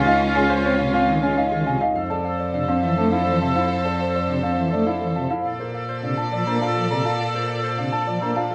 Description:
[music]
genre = classical, minimalist pattern music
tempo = 103 BPM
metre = 3/4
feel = straight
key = Bb lydian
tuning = A4 = 445 Hz
[part]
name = Celtic harp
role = melody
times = 0.0-8.5 s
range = Ab4 to A5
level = -32 LUFS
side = equal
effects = none
[part]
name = clear oboe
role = second line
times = 0.0-8.5 s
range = F4 to A4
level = -31 LUFS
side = equal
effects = none
[part]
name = pipe organ, principal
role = accompaniment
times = 0.0-8.5 s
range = C3 to C4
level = -28 LUFS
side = equal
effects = none
[part]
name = rich studio violin section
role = sustained chords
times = 0.0-8.5 s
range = Db4 to D5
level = -30 LUFS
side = equal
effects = none
[part]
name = dark grand piano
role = arpeggios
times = 0.0-8.5 s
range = C4 to C5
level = -30 LUFS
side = equal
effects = none
[part]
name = worn celesta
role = arpeggios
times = 0.0-8.5 s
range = F5 to Bb5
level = -28 LUFS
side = equal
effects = none
[part]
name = rich cello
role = bass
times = 0.0-8.5 s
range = Db2 to Bb2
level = -28 LUFS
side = equal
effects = none
[sound]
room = moderate large studio reverb, RT60 1.1 s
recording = none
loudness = -22 LUFS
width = mono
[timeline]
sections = 0.0-8.5 A section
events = none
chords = 0.0 Dbmaj7; 2.0 Fmaj7; 5.4 Bbmaj7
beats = | 0.21 0.79 1.37 | 1.95 2.54 3.12 | 3.70 4.28 4.87 | 5.45 6.03 6.61 | 7.20 7.78 8.36

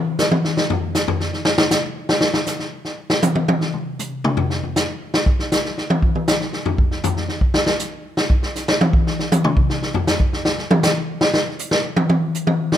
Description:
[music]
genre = jazz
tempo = 158 BPM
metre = 4/4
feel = swing 66% on 8ths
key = none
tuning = none
[part]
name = swinging big-band drum kit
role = drums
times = 0.2-12.8 s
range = hi-hat, kick drum, snare drum, toms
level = -17 LUFS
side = equal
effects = none
[sound]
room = moderate large studio reverb, RT60 1.4 s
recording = minimal, uncompressed stereo recording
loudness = -17 LUFS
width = side -10 dB against mid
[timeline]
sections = 0.0-12.8 A section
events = drum solo 0.0-12.8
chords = none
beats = 0.19 | 0.57 0.95 1.33 1.71 | 2.09 2.47 2.85 3.23 | 3.61 3.99 4.37 4.75 | 5.13 5.51 5.89 6.27 | 6.65 7.03 7.41 7.79 | 8.17 8.55 8.93 9.31 | 9.69 10.07 10.45 10.83 | 11.21 11.59 11.97 12.35 | 12.73

